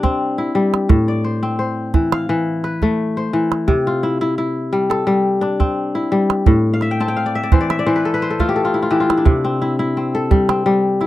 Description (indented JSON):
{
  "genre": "west african traditional, West African string and xylophone music",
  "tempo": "86 BPM",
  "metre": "4/4",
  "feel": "straight",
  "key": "C major",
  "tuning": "A4 = 440 Hz",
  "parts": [
    { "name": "kora", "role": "arpeggios", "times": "0.0-11.1 s", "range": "A2 to A5", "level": "-16 LUFS", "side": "left 2 dB", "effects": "none" },
    { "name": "calabash", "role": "percussion", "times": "0.0-11.1 s", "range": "none", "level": "-15 LUFS", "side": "right 4 dB", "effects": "none" }
  ],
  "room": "light reverb",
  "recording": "dry, close 1970s-style studio recording",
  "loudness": "-15 LUFS",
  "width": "side -14 dB against mid",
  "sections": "0.0-9.3 A section; 9.3-11.1 B section",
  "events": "kora fill 6.7-9.3",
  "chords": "0.0 C; 0.9 Am; 3.7 C; 6.5 Am; 9.3 C"
}